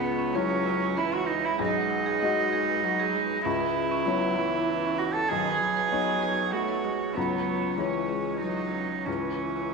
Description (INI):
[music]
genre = neoclassical piano and strings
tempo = 96 BPM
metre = 3/4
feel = rubato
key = C# minor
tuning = A4 = 440 Hz
[part]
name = warm cello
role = second line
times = 0.0-9.7 s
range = B3 to A4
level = -27 LUFS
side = right 5 dB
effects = none
[part]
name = dark viola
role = accompaniment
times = 0.0-9.7 s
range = D#3 to A3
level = -32 LUFS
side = right 6 dB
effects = none
[part]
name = warm upright piano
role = accompaniment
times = 0.0-9.7 s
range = B1 to D#5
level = -31 LUFS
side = left 12 dB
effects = none
[part]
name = warm chamber string section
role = sustained chords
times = 0.0-9.7 s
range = E3 to C#5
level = -39 LUFS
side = right 3 dB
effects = none
[part]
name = marimba with hard mallets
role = arpeggios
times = 0.0-9.7 s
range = C#4 to B5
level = -37 LUFS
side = right 5 dB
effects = slapback echo
[sound]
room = wet echo chamber reverb, RT60 1.4 s, small room ambience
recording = 1960s-style stereo with parts hard left and right, nothing above 10.9 kHz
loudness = -24 LUFS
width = side -4 dB against mid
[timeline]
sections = 0.0-9.7 A section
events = none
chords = 0.0 C#m7; 1.6 G#m7/B; 3.5 C#m7; 5.3 Badd9; 7.2 C#m7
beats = 0.34 0.97 | 1.59 2.22 2.84 | 3.45 4.06 4.68 | 5.30 5.92 6.54 | 7.16 7.78 8.42 | 9.07 9.72